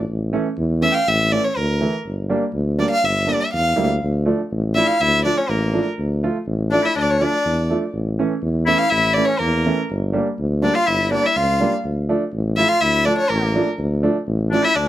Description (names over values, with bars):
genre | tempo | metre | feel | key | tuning
klezmer | 123 BPM | 2/4 | straight | D harmonic minor | A4 = 436 Hz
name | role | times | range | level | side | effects
warm tuba | bass | 0.0-14.9 s | G1 to E2 | -21 LUFS | equal | none
clear upright piano | accompaniment | 0.3-14.6 s | E3 to F4 | -22 LUFS | right 3 dB | none
rich violin | melody | 0.8-14.9 s | Bb4 to G5 | -19 LUFS | equal | none
bright clarinet | second line | 4.8-14.9 s | Bb3 to F4 | -23 LUFS | left 4 dB | none
room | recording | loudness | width
light reverb | none | -17 LUFS | side -13 dB against mid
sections
0.1-7.9 A section; 7.9-14.9 A section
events
none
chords
0.1 A; 2.1 Gm; 4.0 Dm; 7.9 A; 9.9 Gm; 11.8 Dm